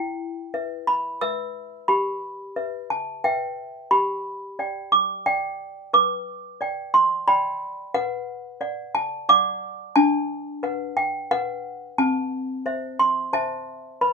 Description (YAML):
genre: classical, lullaby for toy piano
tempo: 89 BPM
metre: 3/4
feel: straight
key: E minor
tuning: A4 = 439 Hz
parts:
  - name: toy piano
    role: solo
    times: 0.0-14.1 s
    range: C4 to E6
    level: -22 LUFS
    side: right 1 dB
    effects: none
room: moderate small room reverb, RT60 0.5 s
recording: minimal, uncompressed stereo recording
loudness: -22 LUFS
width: side -4 dB against mid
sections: 0.0-14.1 A section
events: none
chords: 0.0 Em; 1.9 Em/G; 3.9 G; 5.9 G/B; 7.9 Bm; 10.0 Bm/D; 12.0 Am/C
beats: 0.53 1.21 | 1.89 2.56 3.24 | 3.91 4.58 5.26 | 5.94 6.61 7.28 | 7.95 8.62 9.30 | 9.97 10.64 11.31 | 11.98 12.65 13.33 | 14.01